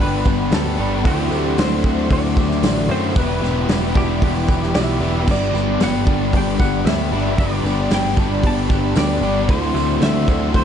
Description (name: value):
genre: rock, shoegaze and dream pop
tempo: 114 BPM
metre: 4/4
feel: straight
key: G major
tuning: A4 = 440 Hz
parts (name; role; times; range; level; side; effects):
- twelve-string electric guitar; melody; 0.0-10.6 s; G4 to A5; -26 LUFS; equal; lush chorus, analog delay
- string machine, violas; sustained chords; 0.0-10.6 s; D5 to D6; -33 LUFS; right 1 dB; ensemble chorus
- electric guitar through a small old amp; arpeggios; 0.0-10.6 s; E3 to G4; -28 LUFS; right 2 dB; analog chorus, analog delay
- biting overdriven guitar; riff; 0.0-10.6 s; E2 to G4; -24 LUFS; left 11 dB; lush chorus
- overdriven electric guitar; riff; 0.0-10.6 s; D3 to C5; -27 LUFS; right 12 dB; reverse reverb
- overdriven electric guitar; riff; 0.0-10.6 s; D3 to C5; -25 LUFS; equal; none
- picked electric bass; bass; 0.0-10.6 s; E1 to F#2; -22 LUFS; equal; none
- loose indie drum kit; drums; 0.0-10.6 s; crash cymbal, hi-hat, kick drum, snare drum; -20 LUFS; equal; none
- tambourine; percussion; 0.2-10.6 s; none; -42 LUFS; right 17 dB; none
room: small room ambience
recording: dark, warm production, nothing above 10.5 kHz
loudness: -16 LUFS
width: side -8 dB against mid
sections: 0.0-10.6 A section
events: none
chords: 0.0 Gmaj7; 1.1 D9sus4; 3.2 Em7; 5.3 G; 9.5 Dsus2